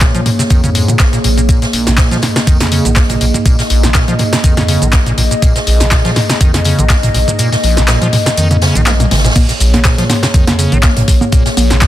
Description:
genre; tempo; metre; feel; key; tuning
acid house; 122 BPM; 4/4; swing 54% on 16ths; Bb minor; A4 = 440 Hz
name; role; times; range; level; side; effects
dark analog pad; sustained chords; 0.0-11.9 s; Bb3 to Eb5; -18 LUFS; equal; lush chorus, sidechain pumping
acid bass, square; riff; 0.0-11.9 s; Bb1 to Bb3; -16 LUFS; equal; overdrive, sidechain pumping, digital delay
saturated sub bass; bass; 0.0-11.9 s; Ab1 to Bb2; -15 LUFS; equal; sidechain pumping
electronic kick drum; drums; 0.0-11.9 s; none; -11 LUFS; equal; none
punchy analog drum machine; drums; 0.0-11.9 s; congas, crash cymbal, handclaps, hi-hat, shaker, snare drum, toms; -15 LUFS; equal; overdrive
swinging big-band drum kit; drums; 0.0-11.9 s; hi-hat, snare drum, tambourine; -23 LUFS; right 1 dB; sidechain pumping on hats, high-pass filter on hats, soft clipping on snare, high-pass filter on snare, sidechain pumping on perc, high-pass filter on perc, high-pass filter on room
room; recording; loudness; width
little or no reverb; dense, heavily limited modern master; -9 LUFS; side -13 dB against mid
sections
0.0-9.4 A section; 9.4-11.9 B section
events
kick drops out 7.4-9.4; drum fill 8.9-9.4; drop 9.4-11.9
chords
0.0 Bbm7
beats
0.01 0.51 1.00 | 1.49 1.98 2.47 2.96 | 3.46 3.95 4.44 4.93 | 5.42 5.92 6.41 6.90 | 7.39 7.88 8.37 8.87 | 9.36 9.85 10.34 10.83 | 11.32 11.82

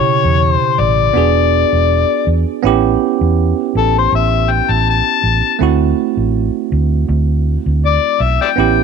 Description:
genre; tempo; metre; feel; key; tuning
straight-eighth soul blues; 81 BPM; 4/4; swing 54% on 16ths; A mixolydian; A4 = 440 Hz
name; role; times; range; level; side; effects
overdriven harmonica; melody; 0.0-8.8 s; A4 to A5; -14 LUFS; left 12 dB; none
bell-like tine electric piano; accompaniment; 0.0-8.8 s; B2 to G#4; -17 LUFS; right 15 dB; none
vintage muted fingered electric bass; bass; 0.2-8.8 s; E1 to E2; -15 LUFS; right 1 dB; none
room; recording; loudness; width
small room ambience; 1960s-style stereo with parts hard left and right; -12 LUFS; side -6 dB against mid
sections
0.0-2.6 A section; 2.6-8.8 B section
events
harmonica solo 2.6-8.8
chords
0.0 A9; 1.2 E9; 2.6 A9; 5.6 D9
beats
0.41 1.16 1.90 | 2.64 3.39 4.13 4.87 | 5.61 6.36 7.10 7.84 | 8.58

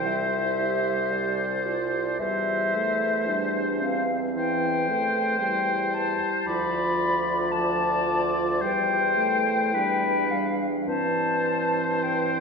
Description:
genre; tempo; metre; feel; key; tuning
classical, slow romantic movement for wind quintet; 50-57 BPM; 4/4; rubato; C major; A4 = 440 Hz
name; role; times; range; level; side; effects
mellow silver concert flute; melody; 0.0-12.4 s; D5 to B5; -27 LUFS; left 4 dB; none
bright oboe; second line; 0.0-12.4 s; B4 to D5; -28 LUFS; equal; none
mellow French horn; accompaniment; 0.0-12.4 s; E3 to A3; -32 LUFS; right 1 dB; none
mellow clarinet; accompaniment; 0.0-12.4 s; C4 to G4; -32 LUFS; right 4 dB; none
warm bassoon; bass; 0.0-12.4 s; C2 to G2; -31 LUFS; right 2 dB; none
room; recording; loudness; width
wet concert hall reverb, RT60 1.9 s; heard from further back in the room; -22 LUFS; side -5 dB against mid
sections
0.0-12.4 A section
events
none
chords
0.0 C; 2.2 C/E; 6.5 Bdim/D; 8.6 C/E; 10.9 C/G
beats
0.05 1.12 | 2.20 3.28 4.36 5.41 | 6.47 7.54 8.62 9.74 | 10.87 12.03

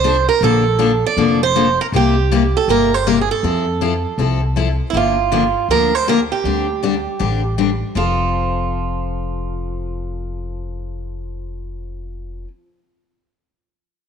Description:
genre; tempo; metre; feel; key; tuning
acoustic string swing (jazz manouche); 159 BPM; 4/4; swing 62% on 8ths; F major; A4 = 439 Hz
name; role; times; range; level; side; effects
picked swing-style acoustic guitar; melody; 0.0-12.4 s; E4 to D5; -18 LUFS; right 8 dB; none
picked steel-string acoustic guitar; accompaniment; 0.0-12.5 s; C3 to A4; -20 LUFS; left 9 dB; none
upright bass; bass; 0.0-12.4 s; F1 to F2; -22 LUFS; equal; none
room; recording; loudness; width
moderate echo chamber reverb, RT60 1.8 s, small room ambience; 1960s-style stereo with parts hard left and right; -15 LUFS; side -7 dB against mid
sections
0.0-4.9 A section; 4.9-8.0 B section; 8.0-11.0 C section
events
none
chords
0.4 Bbmaj7; 1.9 C7; 3.4 Fmaj7; 4.9 Gm7; 6.4 D7sus4; 8.0 F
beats
0.04 | 0.42 0.80 1.17 1.55 | 1.93 2.30 2.68 3.06 | 3.43 3.81 4.19 4.56 | 4.94 5.32 5.69 6.07 | 6.45 6.82 7.20 7.58 | 7.96 8.33 8.71 9.09 | 9.47 9.84 10.22 10.60

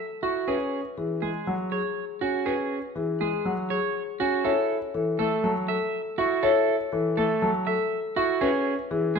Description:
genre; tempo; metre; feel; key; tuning
classical, minimalist pattern music; 121 BPM; 4/4; straight; E major; A4 = 439 Hz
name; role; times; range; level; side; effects
marimba with soft mallets; melody; 0.0-9.2 s; G#4 to C#6; -28 LUFS; left 7 dB; none
electric guitar at the edge of break-up; arpeggios; 0.0-9.2 s; F#4 to E5; -28 LUFS; right 9 dB; none
warm concert grand piano; accompaniment; 0.2-9.2 s; E3 to E4; -28 LUFS; equal; none
room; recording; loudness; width
moderate scoring stage reverb, RT60 1.7 s; none; -24 LUFS; side -6 dB against mid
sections
0.0-9.2 A section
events
none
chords
0.5 Eadd9; 4.4 A; 8.4 E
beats
| 0.48 0.97 1.47 1.97 | 2.46 2.96 3.45 3.95 | 4.45 4.94 5.44 5.93 | 6.43 6.92 7.42 7.92 | 8.41 8.91

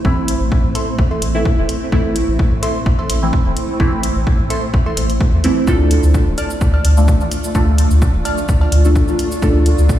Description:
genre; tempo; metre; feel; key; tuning
dub techno; 128 BPM; 4/4; swing 53% on 16ths; A minor; A4 = 440 Hz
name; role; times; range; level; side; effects
granular cloud pad; sustained chords; 0.0-10.0 s; A3 to D5; -24 LUFS; right 1 dB; built-in reverb, sidechain pumping
deep mellow chord stab; stabs; 0.0-9.6 s; E3 to A4; -20 LUFS; right 1 dB; chorus, phaser, cassette tape, sidechain pumping, dub echo
warm sub bass; bass; 0.0-10.0 s; D1 to A2; -16 LUFS; equal; tube saturation, sidechain pumping
electronic kick drum; drums; 0.0-10.0 s; none; -16 LUFS; equal; none
electronic hi-hat and shaker; drums; 0.3-10.0 s; none; -27 LUFS; equal; none
wavetable chord stab; riff; 0.8-8.8 s; A4 to F6; -27 LUFS; equal; sidechain pumping, dub echo
room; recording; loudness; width
light reverb, digital ambience; played on a big sound system in a bare room, stone room reverb; -13 LUFS; side -12 dB against mid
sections
0.0-10.0 A section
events
none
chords
0.0 Am; 5.7 Dm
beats
| 0.05 0.52 0.99 1.46 | 1.92 2.39 2.86 3.33 | 3.80 4.27 4.74 5.21 | 5.67 6.14 6.61 7.08 | 7.55 8.02 8.49 8.96 | 9.42 9.89

